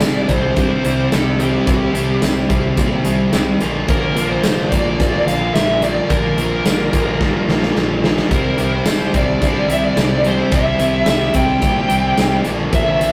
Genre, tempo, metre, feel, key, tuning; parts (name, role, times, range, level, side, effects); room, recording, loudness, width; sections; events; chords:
classic rock; 109 BPM; 4/4; straight; C mixolydian; A4 = 440 Hz
smooth overdriven lead guitar; melody; 0.0-13.1 s; G4 to G5; -22 LUFS; equal
crunchy overdriven guitar; riff; 0.0-13.1 s; Bb2 to F4; -22 LUFS; equal
overdriven semi-hollow guitar; riff; 0.0-13.1 s; Bb2 to C4; -25 LUFS; equal
overdriven fingered electric bass; bass; 0.0-13.1 s; F1 to Bb2; -27 LUFS; equal
big rock drum kit; drums; 0.0-13.1 s; hi-hat, kick drum, snare drum, tambourine; -21 LUFS; equal
moderate stone room reverb, RT60 1.1 s; rough rehearsal-room recording, tube saturation; -16 LUFS; mono
0.0-13.1 A section
drum fill 7.2-8.3
0.0 C; 3.6 Bb; 8.3 C; 12.4 Bb